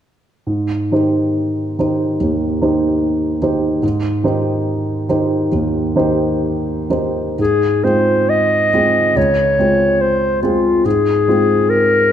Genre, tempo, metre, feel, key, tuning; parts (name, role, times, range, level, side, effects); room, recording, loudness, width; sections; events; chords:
classical, impressionist duo for clarinet and grand piano; 58-75 BPM; 4/4; rubato; Ab major; A4 = 440 Hz
warm grand piano; accompaniment; 0.5-12.1 s; Db2 to C5; -16 LUFS; right 1 dB
warm clarinet; melody; 7.4-12.1 s; F4 to Eb5; -14 LUFS; left 2 dB
wet scoring stage reverb, RT60 1.7 s; dark, warm production; -14 LUFS; side -9 dB against mid
0.5-7.4 A section; 7.4-12.1 B section
0.5 Abmaj7; 7.4 Ab6; 9.2 Dbmaj7; 10.9 Ab6